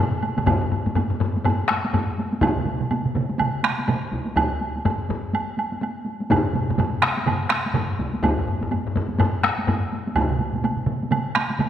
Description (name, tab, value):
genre	japanese traditional, taiko drum ensemble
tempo	124 BPM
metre	4/4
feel	swing 60% on 16ths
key	none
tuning	none
part	taiko ensemble	percussion	0.2-11.7 s	none	-27 LUFS	equal	none
part	woodblock	percussion	0.2-11.7 s	none	-28 LUFS	right 4 dB	none
part	taiko ensemble	percussion	0.4-9.8 s	none	-23 LUFS	left 3 dB	none
part	taiko ensemble	percussion	0.4-11.7 s	none	-25 LUFS	right 3 dB	none
part	taiko ensemble	percussion	0.5-10.3 s	none	-26 LUFS	equal	none
room	wet scoring stage reverb, RT60 1.9 s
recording	none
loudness	-20 LUFS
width	side -10 dB against mid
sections	0.5-11.7 A section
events	none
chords	none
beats	| 0.47 0.96 1.45 1.93 | 2.42 2.90 3.39 3.88 | 4.36 4.84 5.33 5.81 | 6.30 6.78 7.26 7.75 | 8.23 8.71 9.20 9.68 | 10.16 10.64 11.12 11.60